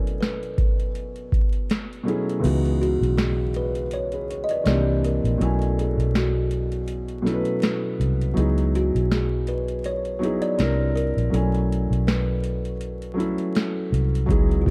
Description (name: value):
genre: lo-fi hip hop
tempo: 81 BPM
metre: 4/4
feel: swing 55% on 16ths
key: unclear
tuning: A4 = 439 Hz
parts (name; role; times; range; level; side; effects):
- kalimba; melody; 0.0-14.7 s; E#4 to D#5; -31 LUFS; equal; low-pass filter
- felt-muted upright piano; accompaniment; 0.0-14.7 s; C#2 to G#5; -29 LUFS; equal; low-pass filter
- booming analog drum machine; drums; 0.1-14.7 s; crash cymbal, hi-hat, kick drum, snare drum; -26 LUFS; equal; overdrive
- vintage muted fingered electric bass; bass; 2.4-14.7 s; Bb1 to C#2; -26 LUFS; equal; none
room: light reverb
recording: dark, warm production, vinyl crackle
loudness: -23 LUFS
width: mono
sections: 0.0-2.4 A section; 2.4-14.7 B section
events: kick muted 2.4-14.3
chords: 0.0 B13sus4; 2.4 C#m11; 4.7 C9; 5.4 B13sus4; 8.4 C#m11; 10.6 C9; 11.3 B13sus4